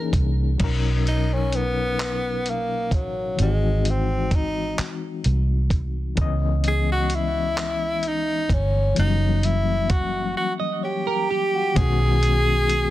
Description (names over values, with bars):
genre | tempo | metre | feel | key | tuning
slow six-eight R&B | 43 BPM (dotted quarters) | 6/8 | straight | B major | A4 = 440 Hz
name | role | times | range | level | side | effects
warm tenor saxophone | melody | 0.0-12.9 s | F#3 to A#4 | -24 LUFS | equal | digital delay
overdriven reed electric piano | accompaniment | 0.0-12.9 s | B2 to D#5 | -28 LUFS | left 7 dB | fast tremolo
vintage muted fingered electric bass | bass | 0.0-12.9 s | F#1 to C#2 | -22 LUFS | right 1 dB | none
dusty soul sampler-style drum kit | drums | 0.1-12.9 s | crash cymbal, handclaps, hi-hat, kick drum | -24 LUFS | equal | vintage 12-bit sampler grit, soft clipping on snare
semi-hollow electric guitar | second line | 10.6-12.0 s | F#4 to D#5 | -26 LUFS | right 9 dB | wide subtle chorus
room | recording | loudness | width
little or no reverb | dense, heavily limited modern master | -20 LUFS | side -15 dB against mid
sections
0.6-11.8 A section; 11.8-12.9 B section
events
tenor saxophone solo 0.6-11.8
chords
0.0 F#13; 0.6 Bmaj9; 3.4 G#7b13; 6.2 C#m7; 9.0 F#7b9; 11.8 B69